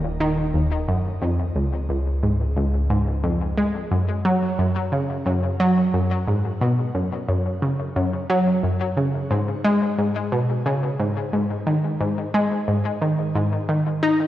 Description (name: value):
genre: ambient, sequencer-driven space music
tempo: 89 BPM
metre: 4/4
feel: straight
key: unclear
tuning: A4 = 440 Hz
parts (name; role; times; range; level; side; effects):
- analog pluck; riff; 0.0-14.3 s; Db2 to D#4; -20 LUFS; equal; chorus, ping-pong delay, shimmer reverb
- round analog bass; bass; 0.0-3.9 s; Eb1 to Db2; -26 LUFS; equal; none
room: wet scoring stage reverb, RT60 1.9 s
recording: worn, warbling old tape, cassette tape, warbly pitch drift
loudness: -20 LUFS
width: side -13 dB against mid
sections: 0.0-3.9 A section; 3.9-14.3 B section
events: none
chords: 0.0 Ebm; 1.2 Db; 3.9 F#5; 9.3 G#m